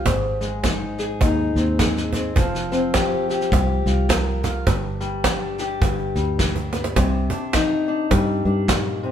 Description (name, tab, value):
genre	acoustic folk duo or small band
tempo	104 BPM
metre	4/4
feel	swing 59% on 8ths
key	C minor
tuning	A4 = 440 Hz
part	fingerpicked acoustic archtop guitar	accompaniment	0.0-9.1 s	G2 to B4	-23 LUFS	left 3 dB	none
part	fingered electric bass	bass	0.0-9.1 s	F1 to G2	-24 LUFS	equal	none
part	soft brush drum kit	drums	0.1-8.8 s	kick drum, snare drum	-24 LUFS	equal	none
part	cajon	percussion	0.1-9.1 s	none	-24 LUFS	right 4 dB	none
room	moderate stone room reverb, RT60 1.1 s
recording	band playing live in one room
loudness	-19 LUFS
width	side -9 dB against mid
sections	0.0-7.0 A section; 7.0-9.1 B section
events	drum fill 6.4-7.0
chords	0.1 Ab; 2.4 Fsus2; 4.7 G5; 5.8 G; 7.0 Cmadd9